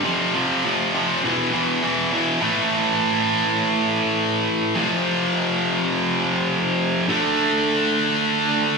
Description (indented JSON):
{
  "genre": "rock",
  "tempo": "102 BPM",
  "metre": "4/4",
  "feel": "straight",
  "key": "unclear",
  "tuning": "A4 = 442 Hz",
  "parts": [
    { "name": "tight distorted guitar", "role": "solo", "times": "0.0-8.8 s", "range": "E2 to D4", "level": "-18 LUFS", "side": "equal", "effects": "distortion, slapback echo" }
  ],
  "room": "moderate scoring stage reverb, RT60 1.6 s, digital ambience",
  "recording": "big arena sound, studio reverb",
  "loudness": "-18 LUFS",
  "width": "side -4 dB against mid",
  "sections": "0.0-2.4 A section; 2.4-8.8 B section",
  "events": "none",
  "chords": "0.1 F5; 1.2 E5; 2.4 A5; 4.8 F5; 7.1 D5"
}